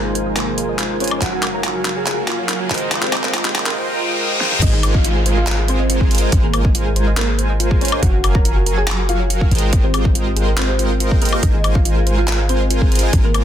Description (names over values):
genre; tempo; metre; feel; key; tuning
future bass; 141 BPM; 4/4; half-time; Ab mixolydian; A4 = 438 Hz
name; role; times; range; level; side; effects
ethereal airy pad; sustained chords; 0.0-3.8 s; C3 to F5; -32 LUFS; left 1 dB; ensemble chorus, built-in reverb, sidechain pumping
soft supersaw; riff; 0.0-13.4 s; Gb3 to Ab5; -22 LUFS; right 2 dB; sidechain pumping, low-pass filter
warm 808-style bass; bass; 0.0-13.4 s; Gb1 to Ab1; -19 LUFS; equal; sidechain pumping
riser, reverse cymbal and downlifter; sound effects; 2.2-8.0 s; none; -26 LUFS; left 2 dB; none
thumb-piano-like synth pluck; arpeggios; 0.1-13.4 s; F4 to Eb5; -30 LUFS; left 3 dB; chorus, sidechain pumping, ping-pong delay
pop drum kit; drums; 0.2-13.4 s; crash cymbal, handclaps, hi-hat, snare drum, toms, woodblock; -21 LUFS; equal; overdrive, soft clipping on snare
thumb-piano-like synth pluck; melody; 0.4-13.4 s; Bb3 to Bb5; -25 LUFS; equal; ensemble chorus, sidechain pumping, digital delay
electronic kick drum; drums; 4.6-13.2 s; none; -16 LUFS; equal; none
room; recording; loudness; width
digital ambience; dense, heavily limited modern master, high-pass filter; -14 LUFS; side -10 dB against mid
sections
0.0-4.6 A section; 4.6-13.4 B section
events
build-up 0.0-4.6; drum fill 0.0-3.8, 4.4; filter sweep on supersaw synth 0.0-4.6; filter sweep on ambient pad 0.0-4.6; filter sweep 0.0-4.6; riser 2.2-4.6; reverse cymbal 3.8-4.6; drop 4.6-13.4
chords
0.0 Ab6; 1.2 Gbmaj7; 2.7 Fm11/Ab; 4.6 Ab6; 8.0 Gbmaj7; 9.5 Fm11/Ab; 11.4 Ab6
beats
0.37 0.79 | 1.22 1.64 2.07 2.49 | 2.92 3.35 3.77 4.20 | 4.62 5.05 5.47 5.90 | 6.32 6.75 7.17 7.60 | 8.03 8.45 8.88 9.30 | 9.73 10.15 10.58 11.00 | 11.43 11.86 12.28 12.71 | 13.13